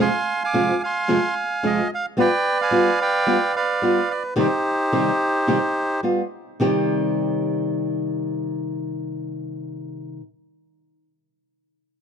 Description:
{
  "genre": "tango",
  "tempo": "110 BPM",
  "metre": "4/4",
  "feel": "rubato",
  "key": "C minor",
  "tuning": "A4 = 445 Hz",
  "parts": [
    { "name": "bandoneon", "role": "melody", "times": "0.0-6.0 s", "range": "Eb4 to D6", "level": "-20 LUFS", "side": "right 2 dB", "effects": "none" },
    { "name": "nylon-string guitar", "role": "accompaniment", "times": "0.0-10.2 s", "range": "F2 to G4", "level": "-22 LUFS", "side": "equal", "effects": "none" }
  ],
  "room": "studio reverb",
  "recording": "dry, close 1970s-style studio recording",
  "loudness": "-19 LUFS",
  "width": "side -7 dB against mid",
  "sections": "0.0-6.6 A section; 6.6-8.8 B section",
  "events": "none",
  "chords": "0.0 Fm; 2.2 G7; 4.4 Cm; 6.0 G7; 6.6 Cm"
}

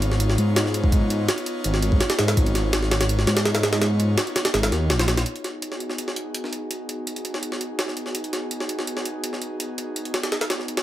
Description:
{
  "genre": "drum and bass, jungle",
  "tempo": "166 BPM",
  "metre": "4/4",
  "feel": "straight",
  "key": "G# dorian",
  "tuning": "A4 = 441 Hz",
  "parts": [
    { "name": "airy breathy pad", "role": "sustained chords", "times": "0.0-10.8 s", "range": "B3 to C#5", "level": "-30 LUFS", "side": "equal", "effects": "chorus" },
    { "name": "dark detuned saw bass", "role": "bass", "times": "0.0-5.2 s", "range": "G#1 to G#2", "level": "-22 LUFS", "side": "equal", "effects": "none" },
    { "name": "jungle sampler-style drum kit", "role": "drums", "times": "0.0-10.8 s", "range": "hi-hat, kick drum, snare drum", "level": "-23 LUFS", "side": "equal", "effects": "overdrive, high-pass filter on hats, high-pass filter on kick, high-pass filter on snare" }
  ],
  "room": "digital ambience",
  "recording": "none",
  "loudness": "-21 LUFS",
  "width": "side -13 dB against mid",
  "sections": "0.0-5.3 A section; 5.3-10.8 B section",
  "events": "drop 0.0-5.3; kick drops out 4.5-5.3",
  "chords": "0.0 G#m; 5.3 G#m7"
}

